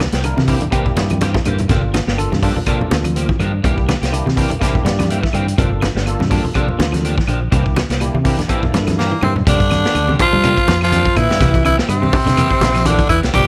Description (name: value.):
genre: afrobeat.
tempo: 124 BPM.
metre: 4/4.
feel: swing 56% on 16ths.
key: unclear.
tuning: A4 = 440 Hz.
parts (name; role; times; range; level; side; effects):
barky tine electric piano; accompaniment; 0.0-9.1 s; Bb3 to G5; -28 LUFS; equal; overdrive, ensemble chorus.
electric guitar at the edge of break-up; arpeggios; 0.0-13.5 s; Bb2 to F3; -27 LUFS; equal; none.
clean electric guitar; stabs; 0.0-13.5 s; E3 to G4; -27 LUFS; equal; ensemble chorus.
fingered electric bass; bass; 0.0-13.5 s; G1 to G3; -21 LUFS; equal; none.
vintage drum kit; drums; 0.0-13.5 s; hi-hat, kick drum, snare drum, toms; -22 LUFS; equal; none.
claves; percussion; 0.0-13.2 s; none; -34 LUFS; equal; none.
congas; percussion; 0.2-13.5 s; none; -24 LUFS; equal; none.
raspy tenor saxophone; melody; 9.0-13.5 s; Bb3 to G4; -19 LUFS; equal; none.
growling tenor saxophone; second line; 9.0-13.5 s; Bb2 to G3; -25 LUFS; equal; none.
room: light reverb.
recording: none.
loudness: -16 LUFS.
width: mono.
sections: 0.0-9.5 A section; 9.5-13.5 B section.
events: drum fill 1.1-1.7, 8.9-9.5; tine electric piano fill 4.6-5.6.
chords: 0.0 C7; 1.7 Gm7; 3.6 C7; 5.6 Gm7; 7.5 C7; 9.5 Gm7; 11.4 C7.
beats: 0.25 0.73 1.22 | 1.70 2.19 2.68 3.16 | 3.65 4.13 4.62 5.10 | 5.59 6.07 6.56 7.04 | 7.53 8.01 8.50 8.98 | 9.46 9.95 10.43 10.92 | 11.40 11.88 12.37 12.85 | 13.33.